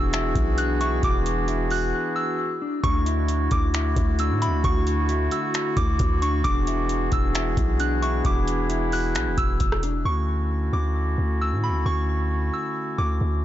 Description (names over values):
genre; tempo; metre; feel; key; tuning
hip hop, atmospheric cloud-rap; 133 BPM; 4/4; half-time; D lydian; A4 = 440 Hz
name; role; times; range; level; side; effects
delicate synth tine bell; melody; 0.0-13.4 s; B5 to F#6; -29 LUFS; equal; chorus, low-pass filter, ping-pong delay
mellow woodwind section; sustained chords; 0.0-13.4 s; D3 to G#4; -28 LUFS; right 1 dB; sidechain pumping
mellow electric guitar; arpeggios; 0.0-10.1 s; D4 to F#4; -31 LUFS; left 3 dB; spring reverb, low-pass filter, ping-pong delay
long sustained 808-style bass; bass; 0.0-13.4 s; E1 to A2; -24 LUFS; equal; none
booming analog drum machine; drums; 0.1-9.9 s; finger snaps, hi-hat, kick drum, rim click; -25 LUFS; equal; soft clipping on snare
room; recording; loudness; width
little or no reverb; blown-out, overdriven recording, overdrive, nothing above 7.5 kHz; -21 LUFS; side -12 dB against mid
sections
0.0-10.1 A section; 10.1-13.4 B section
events
break 1.9-2.8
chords
0.0 E9; 2.8 Dmaj9; 6.4 E9; 10.1 Dmaj9